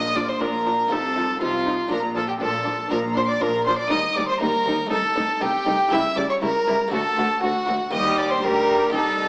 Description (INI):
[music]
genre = classical, baroque-style concerto movement with solo episodes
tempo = 119 BPM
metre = 4/4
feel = straight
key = unclear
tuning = A4 = 438 Hz
[part]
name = warm chamber violin section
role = melody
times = 0.0-9.3 s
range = F5 to E6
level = -29 LUFS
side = equal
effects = none
[part]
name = warm violin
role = melody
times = 0.0-9.3 s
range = F4 to E5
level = -25 LUFS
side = equal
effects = none
[part]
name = buff-stop harpsichord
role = accompaniment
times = 0.0-9.3 s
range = C2 to G4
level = -35 LUFS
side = equal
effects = none
[part]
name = rich chamber double bass section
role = bass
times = 0.0-9.3 s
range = Bb1 to Eb2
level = -39 LUFS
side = equal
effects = none
[part]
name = warm chamber cello section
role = bass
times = 0.0-9.3 s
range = C2 to C3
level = -34 LUFS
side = equal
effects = none
[part]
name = rich chamber violin section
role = second line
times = 0.2-9.3 s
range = D4 to G4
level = -31 LUFS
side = equal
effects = none
[part]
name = warm chamber viola section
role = accompaniment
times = 0.2-9.3 s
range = F3 to A3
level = -34 LUFS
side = equal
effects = none
[sound]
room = wet recital hall reverb, RT60 1.5 s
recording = small speaker sound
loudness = -22 LUFS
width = mono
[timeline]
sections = 0.0-9.3 A section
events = none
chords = 0.0 Bb; 0.9 F7/C; 1.9 Bb; 3.9 Eb; 4.9 Adim/C; 5.9 C#dim7; 6.9 D; 7.9 Eb